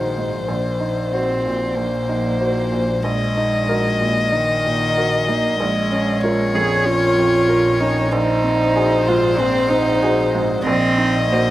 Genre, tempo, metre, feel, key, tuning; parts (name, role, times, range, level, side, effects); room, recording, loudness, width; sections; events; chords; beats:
neoclassical piano and strings; 94 BPM; 4/4; rubato; A4 = 440 Hz
warm violin; melody; 0.0-11.5 s; C5 to Eb5; -21 LUFS; left 4 dB; slapback echo
warm cello; second line; 0.0-11.5 s; Eb3 to Ab4; -20 LUFS; right 2 dB
bright upright piano; accompaniment; 0.0-11.5 s; Bb1 to C5; -22 LUFS; right 1 dB; slapback echo
warm double bass; bass; 0.0-11.5 s; Bb1; -25 LUFS; equal
little or no reverb; recorded outdoors, with no room sound; -16 LUFS; side -15 dB against mid
0.0-11.5 A section
0.5 Cm7b5/Bb; 3.0 Ebm/Bb; 5.6 Bbm7; 8.1 Ab7/Bb; 10.7 Cm7b5/Bb
| 0.49 1.13 1.77 2.40 | 3.04 3.69 4.33 4.97 | 5.60 6.23 6.86 7.49 | 8.13 8.76 9.39 10.02 | 10.66 11.31